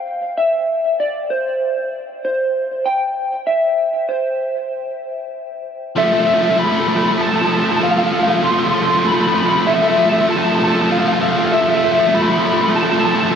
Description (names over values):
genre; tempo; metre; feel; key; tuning
rock; 97 BPM; 3/4; straight; unclear; A4 = 440 Hz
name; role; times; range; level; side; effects
electric guitar through a small old amp; melody; 0.0-13.3 s; C5 to C6; -17 LUFS; equal; analog chorus, digital delay
biting overdriven guitar; riff; 6.0-13.4 s; F3 to A3; -16 LUFS; equal; none
room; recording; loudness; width
moderate huge ambient reverb, RT60 8.6 s; none; -14 LUFS; side -7 dB against mid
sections
0.0-5.9 A section; 5.9-13.4 B section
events
build-up 5.9-13.4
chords
0.0 N.C.; 5.9 Fmaj7